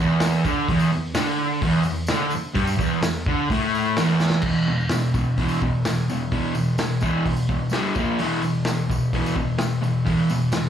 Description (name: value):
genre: garage rock duo or trio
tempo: 128 BPM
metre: 4/4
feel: straight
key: E minor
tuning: A4 = 438 Hz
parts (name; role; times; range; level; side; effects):
- fuzz guitar; riff; 0.0-10.7 s; E2 to A#3; -21 LUFS; equal; distortion
- tambourine; percussion; 0.1-10.6 s; none; -42 LUFS; equal; none
- crunchy breakbeat drum kit; drums; 0.2-10.6 s; crash cymbal, hi-hat, kick drum, snare drum; -26 LUFS; equal; none
room: light reverb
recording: live gig heard through the venue's PA, club ambience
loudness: -20 LUFS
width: side -9 dB against mid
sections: 0.0-4.4 A section; 4.4-10.7 B section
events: drum fill 4.2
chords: 0.0 N.C.; 4.4 E5; 7.7 G5; 8.0 A#5; 8.2 E5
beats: 0.22 | 0.69 1.16 1.62 2.09 | 2.56 3.03 3.50 3.97 | 4.44 4.91 5.38 5.85 | 6.32 6.79 7.26 7.73 | 8.20 8.66 9.13 9.60 | 10.07 10.54